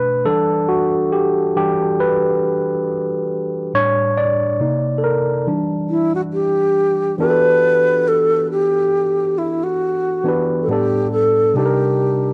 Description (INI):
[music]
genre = R&B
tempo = 69 BPM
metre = 4/4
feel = swing 58% on 16ths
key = unclear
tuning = A4 = 440 Hz
[part]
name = tine electric piano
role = accompaniment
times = 0.0-12.3 s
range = A2 to D5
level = -20 LUFS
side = equal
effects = none
[part]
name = breathy wooden-headed alto flute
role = melody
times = 5.9-12.3 s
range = E4 to B4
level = -18 LUFS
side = equal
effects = cassette tape
[sound]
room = moderate spring reverb, RT60 2.5 s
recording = home recording on cassette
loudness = -17 LUFS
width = mono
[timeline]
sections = 0.0-7.2 A section; 7.2-12.3 B section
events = tine electric piano solo 0.0-7.2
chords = 0.2 Em7; 3.7 A7sus4; 4.6 Cm9; 5.5 Em7; 7.2 Em11; 10.7 A7sus4; 11.5 Cm9